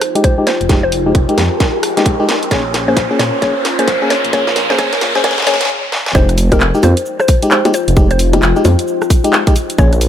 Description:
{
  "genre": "UK garage, two-step garage",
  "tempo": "132 BPM",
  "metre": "4/4",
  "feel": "swing 62% on 16ths",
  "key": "F minor",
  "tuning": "A4 = 440 Hz",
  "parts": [
    { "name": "mallet-like synth pluck", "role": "melody", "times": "0.0-10.0 s", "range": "Bb4 to Db5", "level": "-19 LUFS", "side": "left 1 dB", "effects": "chorus, vintage 12-bit sampler grit, tape echo" },
    { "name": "airy breathy pad", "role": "sustained chords", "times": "0.0-5.7 s", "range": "Db4 to C5", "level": "-24 LUFS", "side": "right 3 dB", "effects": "chorus, phaser, sidechain pumping" },
    { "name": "garage drum kit", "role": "drums", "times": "0.0-10.1 s", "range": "bongos, cabasa, handclaps, hi-hat, rim click, snare drum", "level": "-18 LUFS", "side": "equal", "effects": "high-pass filter on hats, small room ambience, high-pass filter on snare, high-pass filter on perc" },
    { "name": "riser", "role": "sound effects", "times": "0.8-5.7 s", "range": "none", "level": "-21 LUFS", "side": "equal", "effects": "none" },
    { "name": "deep dark ambient pad", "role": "texture", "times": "0.0-10.1 s", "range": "F4 to C6", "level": "-23 LUFS", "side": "left 5 dB", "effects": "chorus, built-in reverb, sidechain pumping" },
    { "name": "FM electric piano", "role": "stabs", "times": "0.2-9.9 s", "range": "Ab3 to Ab4", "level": "-18 LUFS", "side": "left 1 dB", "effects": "chorus, low-pass filter, tape echo" },
    { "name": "electronic kick drum", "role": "drums", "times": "0.2-9.9 s", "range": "none", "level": "-13 LUFS", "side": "equal", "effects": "small room ambience" },
    { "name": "dark detuned saw bass", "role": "bass", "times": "0.6-10.1 s", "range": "F1 to Bb2", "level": "-15 LUFS", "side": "equal", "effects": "none" }
  ],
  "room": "light reverb, digital ambience",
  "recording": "high-pass filter",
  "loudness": "-11 LUFS",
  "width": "side -10 dB against mid",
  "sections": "0.0-6.1 A section; 6.1-10.1 B section",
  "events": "build-up 0.0-6.1; drum fill 0.0-5.7, 5.9; filter sweep on FM electric piano 0.0-6.1; filter sweep on synth pluck 0.0-6.1; filter sweep on analog synth pad 0.0-6.1; filter sweep 0.0-6.1; riser 0.8-5.7; stop 5.7-6.1; drop 6.1-10.1",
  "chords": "0.0 Fm9; 2.5 Bbm7; 6.1 Fm9"
}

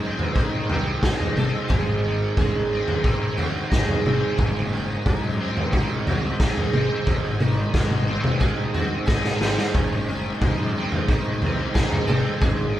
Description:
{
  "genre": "psychedelic rock",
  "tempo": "90 BPM",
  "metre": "4/4",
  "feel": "straight",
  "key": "G# major",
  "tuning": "A4 = 439 Hz",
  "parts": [
    { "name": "sitar", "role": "melody", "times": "0.0-12.8 s", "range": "B#3 to A4", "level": "-30 LUFS", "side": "right 4 dB", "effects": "none" },
    { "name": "percussive tonewheel organ", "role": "sustained chords", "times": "0.0-12.8 s", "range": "B#4 to B#5", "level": "-36 LUFS", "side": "right 4 dB", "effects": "overdrive, chorus vibrato, slow rotary speaker" },
    { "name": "cranked stack guitar", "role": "riff", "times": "0.0-12.8 s", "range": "G#2 to D#4", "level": "-26 LUFS", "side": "equal", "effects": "overdrive, rotary speaker" },
    { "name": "fuzz fingered electric bass", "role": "bass", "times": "0.0-12.8 s", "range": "F#1 to G#2", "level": "-29 LUFS", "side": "equal", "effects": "overdrive" },
    { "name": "raw garage drum kit", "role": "drums", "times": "0.2-12.6 s", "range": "kick drum, snare drum, toms", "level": "-22 LUFS", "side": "equal", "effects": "none" }
  ],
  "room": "light reverb",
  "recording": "band playing live in one room",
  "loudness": "-20 LUFS",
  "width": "side -13 dB against mid",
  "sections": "0.0-12.8 A section",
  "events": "drum fill 9.1-9.7",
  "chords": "0.0 G#"
}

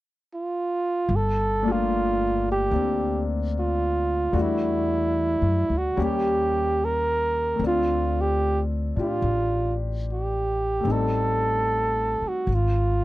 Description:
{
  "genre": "jazz ballad",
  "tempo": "74 BPM",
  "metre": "4/4",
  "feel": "swing 68% on 8ths",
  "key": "G minor",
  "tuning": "A4 = 440 Hz",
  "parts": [
    { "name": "mellow flugelhorn", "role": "melody", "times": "0.3-13.0 s", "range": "E4 to Bb4", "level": "-24 LUFS", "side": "right 2 dB", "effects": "none" },
    { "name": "upright bass", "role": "bass", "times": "1.1-13.0 s", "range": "G1 to A2", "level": "-27 LUFS", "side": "equal", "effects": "none" },
    { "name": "clear grand piano", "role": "accompaniment", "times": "1.6-12.5 s", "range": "G3 to G4", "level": "-29 LUFS", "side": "left 5 dB", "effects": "none" }
  ],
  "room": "little or no reverb",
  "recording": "dry, close 1970s-style studio recording",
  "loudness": "-22 LUFS",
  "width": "side -16 dB against mid",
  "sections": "0.0-1.1 A section; 1.1-13.0 B section",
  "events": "none",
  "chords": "0.0 N.C.; 1.1 Gm9; 4.3 Em11; 6.0 Eb7; 7.6 Dm7; 10.8 Am7b5; 12.5 N.C."
}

